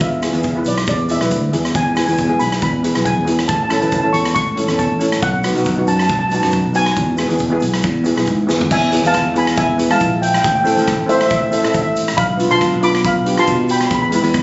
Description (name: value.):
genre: calypso.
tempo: 138 BPM.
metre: 4/4.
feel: straight.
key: unclear.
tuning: A4 = 440 Hz.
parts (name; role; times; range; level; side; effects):
steel pan; melody; 0.0-14.3 s; C5 to D6; -18 LUFS; equal; plate reverb, ping-pong delay.
modern bright fingered electric bass; bass; 0.0-14.4 s; A1 to B2; -19 LUFS; equal; none.
street-band drum kit; drums; 0.0-14.4 s; crash cymbal, hi-hat, kick drum, rim click, snare drum, toms; -22 LUFS; equal; none.
egg shaker; percussion; 0.0-14.4 s; none; -37 LUFS; right 1 dB; none.
steel pan; accompaniment; 0.2-14.4 s; E3 to B4; -19 LUFS; equal; plate reverb.
room: light reverb.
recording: recorded on a phone in the room, studio reverb, compression, nothing above 7.8 kHz.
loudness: -13 LUFS.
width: side -23 dB against mid.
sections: 0.0-8.7 A section; 8.7-14.4 B section.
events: drum fill 8.5.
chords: 0.0 E; 3.5 A; 5.2 B; 7.0 E; 10.4 Am; 12.2 Bm7b5; 13.9 E.